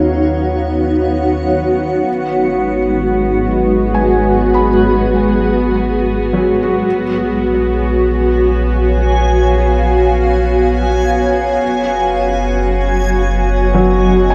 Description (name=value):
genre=ambient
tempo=free time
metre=none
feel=none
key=unclear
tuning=A4 = 440 Hz
part: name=granular cloud pad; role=sustained chords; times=0.0-14.3 s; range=G#3 to G#5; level=-17 LUFS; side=equal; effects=built-in reverb
part: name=felt-muted upright piano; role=arpeggios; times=0.0-7.0, 13.7-14.3 s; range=F#3 to B5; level=-23 LUFS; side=equal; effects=diffuse ambient delay
part: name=warm sub bass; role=bass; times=0.0-14.3 s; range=F#1 to D#2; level=-20 LUFS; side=equal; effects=none
part: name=bowed-like drone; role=drone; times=0.0-14.3 s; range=B3 to F#4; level=-23 LUFS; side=equal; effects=built-in reverb
part: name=backwards swelling texture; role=texture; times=7.8-14.3 s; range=G#5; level=-25 LUFS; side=equal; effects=built-in reverb
room=wet lush hall reverb, RT60 2.6 s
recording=dark, warm production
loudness=-14 LUFS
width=mono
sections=0.0-14.3 A section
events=fade-in on felt piano 0.0-14.3; fade-in on sub bass 0.0-14.3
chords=0.0 D#m7; 2.1 G#m7; 6.9 A#m7; 11.6 F#m6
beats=free time